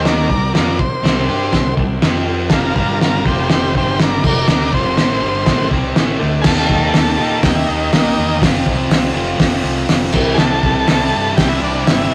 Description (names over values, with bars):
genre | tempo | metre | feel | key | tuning
garage rock duo or trio | 122 BPM | 4/4 | straight | unclear | A4 = 440 Hz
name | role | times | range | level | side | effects
combo organ | melody | 0.0-12.1 s | Bb3 to D5 | -22 LUFS | equal | tape echo
overdriven electric guitar | riff | 0.0-12.1 s | F2 to G4 | -22 LUFS | equal | none
fuzz fingered electric bass | bass | 0.0-12.1 s | F1 to Bb2 | -25 LUFS | equal | overdrive
cloth-damped thuddy drum kit | drums | 0.1-12.0 s | crash cymbal, hi-hat, kick drum, snare drum | -18 LUFS | equal | none
room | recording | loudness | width
light reverb | rough rehearsal-room recording, warm saturation | -15 LUFS | mono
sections
0.0-6.5 A section; 6.5-12.1 B section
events
none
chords
0.3 C5; 2.0 F5; 2.8 G5; 3.3 F5; 3.7 G5; 4.2 F5; 6.5 Eb; 8.4 F; 10.1 C